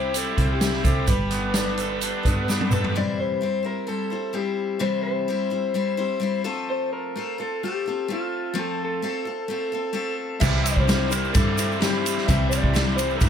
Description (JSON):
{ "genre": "folk rock and heartland rock", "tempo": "129 BPM", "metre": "4/4", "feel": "straight", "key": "C major", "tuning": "A4 = 444 Hz", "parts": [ { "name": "electric guitar through a small old amp", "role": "melody", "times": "0.0-13.3 s", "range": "F4 to E5", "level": "-28 LUFS", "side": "left 1 dB", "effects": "none" }, { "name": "picked steel-string acoustic guitar", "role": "accompaniment", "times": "0.0-13.3 s", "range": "C3 to C5", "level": "-28 LUFS", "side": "left 4 dB", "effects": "none" }, { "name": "tonewheel organ", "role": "sustained chords", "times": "0.0-2.9, 10.4-13.3 s", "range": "E4 to C5", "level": "-37 LUFS", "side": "right 1 dB", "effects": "none" }, { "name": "raw garage guitar", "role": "riff", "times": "0.0-3.0, 10.4-13.3 s", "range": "C3 to A4", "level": "-27 LUFS", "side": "equal", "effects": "overdrive" }, { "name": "dark double bass", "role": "bass", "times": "0.0-2.9, 10.4-13.3 s", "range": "G1 to G2", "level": "-26 LUFS", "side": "right 1 dB", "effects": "none" }, { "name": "vintage drum kit", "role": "drums", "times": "0.1-3.0, 10.4-13.3 s", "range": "crash cymbal, hi-hat, kick drum, ride cymbal, snare drum, toms", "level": "-24 LUFS", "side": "right 1 dB", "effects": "none" }, { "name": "egg shaker", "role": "percussion", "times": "0.2-2.8, 10.4-13.3 s", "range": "none", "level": "-34 LUFS", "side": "right 13 dB", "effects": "none" } ], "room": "light reverb", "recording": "none", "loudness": "-21 LUFS", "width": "side -8 dB against mid", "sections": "0.0-3.0 A section; 3.0-13.3 B section", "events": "drum fill 2.5-3.0", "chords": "0.0 C; 1.1 Gadd9; 3.0 C; 6.5 F; 10.4 C" }